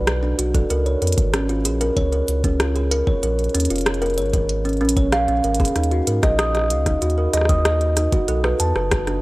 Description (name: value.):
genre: IDM.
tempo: 95 BPM.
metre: 4/4.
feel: straight.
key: Eb minor.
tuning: A4 = 441 Hz.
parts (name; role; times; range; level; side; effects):
warm sub bass; bass; 0.0-9.2 s; F1 to Ab2; -22 LUFS; equal; none.
glitchy drum kit; drums; 0.1-9.2 s; hi-hat, rim click; -24 LUFS; equal; studio ambience.
kalimba; arpeggios; 0.2-9.1 s; Db4 to Eb6; -21 LUFS; right 1 dB; tape echo.
electronic kick drum; drums; 0.5-9.0 s; none; -21 LUFS; equal; overdrive, studio ambience.
room: digital ambience.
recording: dry, gritty hardware recording.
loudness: -17 LUFS.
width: side -20 dB against mid.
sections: 0.0-9.2 A section.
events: none.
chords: 0.0 B7(no3); 0.7 Db5; 3.2 Bbm7; 5.8 Eb5; 8.3 B7(no3).